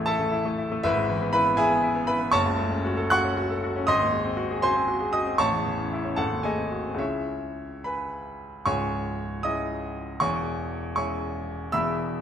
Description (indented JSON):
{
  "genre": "classical, virtuoso piano study",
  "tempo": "78 BPM (dotted quarters)",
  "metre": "6/8",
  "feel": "rubato",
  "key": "C# minor",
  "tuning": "A4 = 441 Hz",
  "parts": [
    { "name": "clear baby grand piano", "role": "solo", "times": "0.0-12.2 s", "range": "C#1 to F#6", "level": "-24 LUFS", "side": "equal", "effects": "none" }
  ],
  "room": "wet recital hall reverb, RT60 1.4 s",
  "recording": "none",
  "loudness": "-23 LUFS",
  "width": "side -8 dB against mid",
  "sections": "0.0-8.7 A section; 8.7-12.2 B section",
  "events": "none",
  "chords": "0.0 A; 0.8 E/G#; 2.3 F#m; 3.9 G#7; 5.4 A; 6.2 G#7b9; 7.0 C#m; 10.2 C#m/E"
}